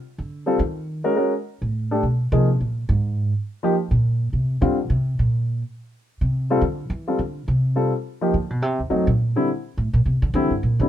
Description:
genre	jazz piano trio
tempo	209 BPM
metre	4/4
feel	swing 59% on 8ths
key	Bb major, F major from 6.9 s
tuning	A4 = 440 Hz
part	upright bass	bass	0.2-10.9 s	Eb2 to E3	-21 LUFS	right 1 dB	none
part	warm grand piano	melody	0.5-10.9 s	D3 to Bb4	-21 LUFS	left 1 dB	none
room	light reverb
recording	minimal, uncompressed stereo recording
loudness	-20 LUFS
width	side -11 dB against mid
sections	0.0-6.9 A section; 6.9-10.9 A section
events	upright bass solo 0.0-10.9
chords	0.0 Ebmaj7(no3); 1.2 Ab9sus4; 1.7 Gadd9 (rootless); 2.3 Abadd9; 3.5 N.C.; 4.0 Bbsus2; 4.6 Bbadd9; 5.8 N.C.; 6.3 F5 (rootless); 6.9 Fmaj9; 8.0 N.C.; 8.6 Ebm6; 9.2 Bbmaj7; 10.3 C7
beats	| 0.01 0.30 0.59 0.88 | 1.16 1.45 1.74 2.02 | 2.31 2.60 2.88 3.17 | 3.46 3.75 4.03 4.32 | 4.61 4.89 5.18 5.47 | 5.75 6.04 6.33 6.61 | 6.90 7.19 7.47 7.76 | 8.05 8.34 8.62 8.91 | 9.20 9.48 9.77 10.06 | 10.34 10.63

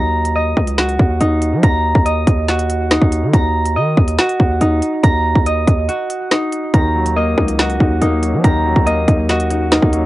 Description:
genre	hip hop, drill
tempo	141 BPM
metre	4/4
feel	half-time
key	Eb minor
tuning	A4 = 440 Hz
part	concert harp	arpeggios	0.0-10.1 s	Eb4 to Bb5	-17 LUFS	right 1 dB	low-pass filter, analog delay
part	hard-hitting 808-style bass	bass	0.0-10.1 s	Db2 to Gb3	-17 LUFS	equal	none
part	drill drum kit	drums	0.2-10.0 s	hi-hat, kick drum, rim click, snare drum	-15 LUFS	equal	none
part	warm concert grand piano	accompaniment	6.7-10.1 s	Eb3 to Eb5	-22 LUFS	left 2 dB	low-pass filter
room	little or no reverb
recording	home recording on cassette, nothing above 10.9 kHz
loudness	-13 LUFS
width	side -17 dB against mid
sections	0.0-10.1 A section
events	break 5.9-6.7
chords	0.0 Ebm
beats	0.36 0.78 1.21 | 1.63 2.06 2.48 2.91 | 3.33 3.76 4.19 4.61 | 5.04 5.46 5.89 6.31 | 6.74 7.16 7.59 8.02 | 8.44 8.87 9.29 9.72

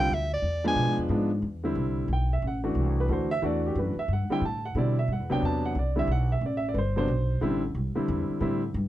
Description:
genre	modal jazz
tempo	180 BPM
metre	3/4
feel	swing 64% on 8ths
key	A dorian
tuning	A4 = 440 Hz
part	clear soprano saxophone	melody	0.0-1.0 s	D5 to G#5	-28 LUFS	right 1 dB	none
part	warm baby grand piano	accompaniment	0.0-8.6 s	C3 to A5	-28 LUFS	equal	none
part	upright bass	bass	0.0-8.9 s	G1 to B2	-28 LUFS	equal	none
room	light reverb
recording	dark, warm production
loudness	-25 LUFS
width	side -14 dB against mid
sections	0.0-1.4 A section; 1.4-8.9 A section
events	soprano saxophone solo 0.0-1.4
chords	0.4 E7b9; 1.4 Am9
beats	0.10 | 0.43 0.77 1.10 | 1.43 1.76 2.09 | 2.43 2.76 3.09 | 3.42 3.76 4.09 | 4.42 4.75 5.09 | 5.42 5.75 6.08 | 6.42 6.75 7.08 | 7.42 7.75 8.08 | 8.41 8.75

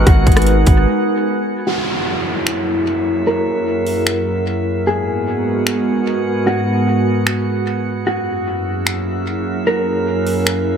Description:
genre	hip hop, atmospheric cloud-rap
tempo	150 BPM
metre	4/4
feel	half-time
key	unclear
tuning	A4 = 440 Hz
part	warbly tape-like pad	sustained chords	0.0-10.8 s	F#2 to B4	-18 LUFS	right 1 dB	chorus, built-in reverb, sidechain pumping, low-pass filter
part	long sustained 808-style bass	bass	0.0-0.9 s	G#1	-14 LUFS	equal	none
part	drifting glass-harmonics texture	texture	0.0-10.8 s	A#3 to F#5	-26 LUFS	right 1 dB	chorus, built-in reverb
part	mellow electric guitar	melody	0.1-10.8 s	F#4 to A#4	-21 LUFS	right 1 dB	low-pass filter, dub echo
part	trap drum kit	drums	0.1-10.6 s	finger snaps, hi-hat, kick drum, rim click	-15 LUFS	equal	dub echo
part	downlifter	sound effects	1.7-4.9 s	none	-26 LUFS	equal	none
room	light reverb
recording	echo-heavy mix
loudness	-15 LUFS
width	side -7 dB against mid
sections	0.0-1.7 A section; 1.7-10.8 B section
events	break 0.9-1.7; filter sweep 1.7-10.8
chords	0.0 G#m7; 1.7 F#7; 4.9 G#m7; 8.1 F#7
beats	| 0.07 0.47 0.87 1.27 | 1.67 2.07 2.47 2.87 | 3.27 3.67 4.07 4.47 | 4.87 5.27 5.67 6.07 | 6.47 6.87 7.27 7.67 | 8.07 8.47 8.87 9.27 | 9.67 10.07 10.47

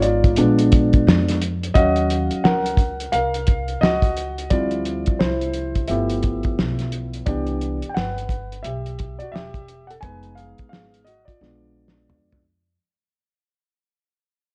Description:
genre	hip hop, jazz-hop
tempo	87 BPM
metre	4/4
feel	swing 61% on 16ths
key	unclear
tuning	A4 = 445 Hz
part	dark concert grand piano	accompaniment	0.0-12.4 s	E3 to Ab5	-24 LUFS	equal	none
part	upright bass	bass	0.0-12.8 s	E1 to F2	-28 LUFS	equal	none
part	cloth-damped thuddy drum kit	drums	0.0-12.5 s	hi-hat, kick drum, snare drum, toms	-22 LUFS	equal	vintage 12-bit sampler grit
room	light reverb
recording	worn, warbling old tape, cassette tape, warbly pitch drift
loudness	-20 LUFS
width	mono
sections	0.0-1.8 A section; 1.8-12.8 B section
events	grand piano solo 0.0-1.8, 1.8-12.8; fade-out 1.8-12.8; drum fill 11.4-12.8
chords	0.4 Bb7b9; 1.8 Ebm9; 4.5 Dm11; 5.9 G13; 7.3 Cmaj9; 10.0 Fm7b5; 11.4 Bb7b9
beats	0.37 1.06 | 1.75 2.44 3.13 3.82 | 4.51 5.20 5.89 6.58 | 7.27 7.96 8.65 9.34 | 10.03 10.72 11.41 12.10

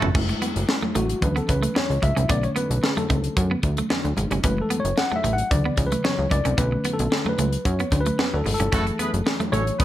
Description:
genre	early-eighties boogie funk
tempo	112 BPM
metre	4/4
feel	straight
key	F# minor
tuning	A4 = 440 Hz
part	warm horn section	second line	0.0-0.1, 8.7-9.8 s	A3 to C#5	-28 LUFS	right 1 dB	slapback echo
part	clean electric guitar	riff	0.0-9.6 s	A3 to C#4	-30 LUFS	right 5 dB	analog chorus
part	plucky analog bass	bass	0.0-9.8 s	F#1 to F#2	-24 LUFS	equal	none
part	tight funk drum kit	drums	0.0-9.8 s	crash cymbal, hi-hat, kick drum, snare drum, toms	-25 LUFS	equal	none
part	congas	percussion	0.0-9.8 s	none	-32 LUFS	left 2 dB	none
part	tine electric piano	accompaniment	0.1-9.8 s	C#3 to F#5	-26 LUFS	left 2 dB	none
room	light reverb, small room ambience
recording	none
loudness	-20 LUFS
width	side -13 dB against mid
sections	0.2-9.8 A section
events	drum fill 0.0; tine electric piano solo 0.2-9.8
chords	0.2 F#m7; 1.2 Dmaj7; 2.3 Bm9; 4.4 F#m7; 5.5 Dmaj7; 6.6 Bm9; 8.7 F#m7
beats	| 0.15 0.69 1.22 1.76 | 2.29 2.83 3.37 3.90 | 4.44 4.97 5.51 6.04 | 6.58 7.12 7.65 8.19 | 8.72 9.26 9.79

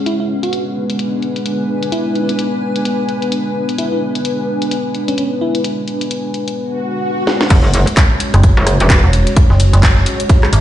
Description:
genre	bass house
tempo	129 BPM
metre	4/4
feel	swing 59% on 16ths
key	unclear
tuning	A4 = 440 Hz
part	dark analog pad	sustained chords	0.0-10.6 s	G#3 to C#5	-20 LUFS	left 1 dB	chorus, sidechain pumping
part	granular cloud pad	texture	0.0-10.6 s	D4 to G#5	-25 LUFS	equal	built-in reverb, sidechain pumping
part	bell-like FM electric piano	melody	0.1-5.6 s	C#4 to F#4	-22 LUFS	equal	chorus, digital delay
part	house drum kit	drums	0.1-10.6 s	crash cymbal, handclaps, hi-hat, rim click, snare drum	-20 LUFS	left 1 dB	low-pass filter on hats, low-pass filter on cymbals, low-pass filter on snare, low-pass filter on room
part	swell	sound effects	6.7-7.5 s	none	-22 LUFS	left 1 dB	none
part	metallic wobble bass	bass	7.5-9.0 s	E1 to F#1	-12 LUFS	equal	chorus, tube saturation, sidechain pumping
part	dusty soul sampler-style drum kit	drums	7.5-10.6 s	ride cymbal, snare drum	-30 LUFS	right 2 dB	none
part	electronic kick drum	drums	7.5-10.4 s	none	-10 LUFS	equal	none
part	metallic FM bass	bass	8.3-10.6 s	E1 to G#1	-10 LUFS	equal	overdrive, sidechain pumping
room	light reverb, digital ambience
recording	played on a big sound system in a bare room, stone room reverb, nothing above 11.0 kHz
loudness	-12 LUFS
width	side -12 dB against mid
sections	0.0-7.5 A section; 7.5-10.6 B section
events	swell 6.7-7.5; drum fill 7.3; drop 7.5-10.6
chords	0.1 G#dim; 7.5 F#sus2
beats	| 0.06 0.53 0.99 1.46 | 1.92 2.39 2.85 3.32 | 3.78 4.25 4.71 5.18 | 5.64 6.11 6.57 7.04 | 7.50 7.97 8.44 8.90 | 9.37 9.83 10.29

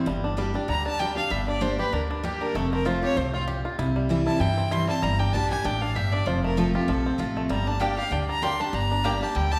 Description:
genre	bluegrass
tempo	194 BPM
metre	4/4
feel	swing 55% on 8ths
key	G dorian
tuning	A4 = 440 Hz
part	picked steel-string acoustic guitar	accompaniment	0.0-9.6 s	F2 to G4	-30 LUFS	equal	none
part	bluegrass banjo	arpeggios	0.0-9.6 s	E3 to G4	-33 LUFS	equal	none
part	upright bass	bass	0.1-9.6 s	F1 to G2	-32 LUFS	equal	none
part	clear fiddle	melody	0.7-9.6 s	D4 to C6	-31 LUFS	equal	none
part	mandolin	stabs	7.8-9.2 s	Bb3 to G5	-34 LUFS	equal	none
room	wet recital hall reverb, RT60 1.4 s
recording	recorded in a church or concert hall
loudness	-25 LUFS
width	mono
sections	0.0-9.6 A section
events	fiddle solo 0.0-9.6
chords	0.1 Gm; 2.5 F; 3.8 C; 5.0 Gm; 6.3 F; 7.5 Gm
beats	| 0.07 0.38 0.69 1.00 | 1.31 1.62 1.93 2.24 | 2.55 2.86 3.17 3.48 | 3.79 4.10 4.41 4.72 | 5.03 5.34 5.65 5.96 | 6.26 6.57 6.88 7.19 | 7.50 7.81 8.12 8.43 | 8.74 9.05 9.36

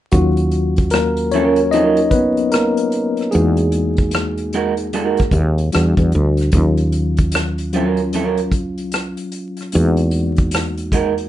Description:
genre	R&B, neo-soul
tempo	75 BPM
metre	4/4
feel	swing 63% on 16ths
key	Eb phrygian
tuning	A4 = 440 Hz
part	tine electric piano	accompaniment	0.1-11.3 s	Gb3 to Eb5	-19 LUFS	left 2 dB	medium stereo tremolo
part	woody fretless electric bass	bass	0.1-11.3 s	Db2 to E2	-18 LUFS	equal	none
part	unplugged drum kit	drums	0.1-11.3 s	hi-hat, kick drum, rim click	-20 LUFS	equal	none
part	electric guitar through a small old amp	second line	0.9-11.1 s	Gb3 to Bb4	-19 LUFS	right 7 dB	slapback echo
room	light reverb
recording	rough home demo mix, vinyl crackle, nothing above 10.9 kHz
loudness	-14 LUFS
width	side -13 dB against mid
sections	0.1-11.3 A section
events	tine electric piano solo 0.1-11.3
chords	0.1 Ebm9; 3.3 Emaj9#11; 5.7 Em9; 6.5 Ebm9; 9.7 Emaj9#11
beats	| 0.13 0.93 1.73 2.53 | 3.33 4.13 4.93 5.73 | 6.53 7.33 8.13 8.93 | 9.73 10.53

